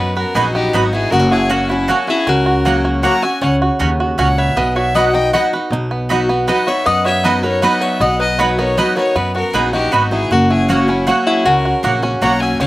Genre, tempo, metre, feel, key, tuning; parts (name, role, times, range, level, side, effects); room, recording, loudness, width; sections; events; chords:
bluegrass; 157 BPM; 3/4; straight; B major; A4 = 439 Hz
bluegrass banjo; melody; 0.0-12.7 s; B3 to B4; -20 LUFS; right 3 dB; slapback echo
bright fiddle; melody; 0.0-12.7 s; E4 to A#5; -21 LUFS; left 1 dB
lap resonator guitar; second line; 0.0-12.7 s; C#4 to F#5; -19 LUFS; left 2 dB; slapback echo
picked steel-string acoustic guitar; accompaniment; 0.0-12.7 s; F#2 to F#4; -21 LUFS; left 1 dB
upright bass; bass; 0.0-12.7 s; F#1 to F#2; -19 LUFS; equal
mandolin; stabs; 0.3-12.3 s; A#3 to B5; -19 LUFS; right 4 dB; slapback echo
little or no reverb; recorded outdoors, with no room sound; -12 LUFS; side -17 dB against mid
0.0-5.7 A section; 5.7-12.7 A section
0.0 B; 1.1 F#; 3.4 C#sus4; 4.6 B; 10.3 F#